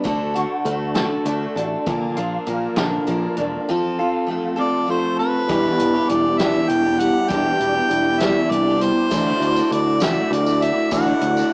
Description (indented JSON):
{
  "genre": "folk rock and heartland rock",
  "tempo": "66 BPM (dotted quarters)",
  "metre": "6/8",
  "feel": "straight",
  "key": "unclear",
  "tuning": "A4 = 440 Hz",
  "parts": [
    { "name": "picked steel-string acoustic guitar", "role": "accompaniment", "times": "0.0-11.5 s", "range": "Bb2 to D5", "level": "-24 LUFS", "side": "equal", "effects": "none" },
    { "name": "electric guitar through a small old amp", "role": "riff", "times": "0.0-11.5 s", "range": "E2 to F#4", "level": "-21 LUFS", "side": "equal", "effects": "ensemble chorus" },
    { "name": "picked electric bass", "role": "bass", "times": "0.1-11.4 s", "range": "E1 to D2", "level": "-26 LUFS", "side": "equal", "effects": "none" },
    { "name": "natural country drum kit", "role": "drums", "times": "0.1-11.4 s", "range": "hi-hat, kick drum, snare drum", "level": "-26 LUFS", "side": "equal", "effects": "cassette tape" },
    { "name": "clear harmonica", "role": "melody", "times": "4.6-11.5 s", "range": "B4 to G5", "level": "-21 LUFS", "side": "equal", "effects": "none" },
    { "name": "mellow tonewheel organ", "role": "sustained chords", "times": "5.5-11.5 s", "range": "E4 to D5", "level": "-28 LUFS", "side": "equal", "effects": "none" },
    { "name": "overdriven reed electric piano", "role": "accompaniment", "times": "9.1-11.5 s", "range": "E4 to D5", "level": "-29 LUFS", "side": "equal", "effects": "none" },
    { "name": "tambourine", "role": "percussion", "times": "9.1-11.5 s", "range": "none", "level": "-35 LUFS", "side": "right 1 dB", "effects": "none" }
  ],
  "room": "moderate studio reverb, RT60 0.6 s",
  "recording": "home recording on cassette, small speaker sound",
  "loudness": "-17 LUFS",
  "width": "side -33 dB against mid",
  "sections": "0.0-5.5 A section; 5.5-11.5 B section",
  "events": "none",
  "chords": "0.0 D; 1.9 Bb; 3.7 F; 5.5 Em7; 9.1 Dadd9"
}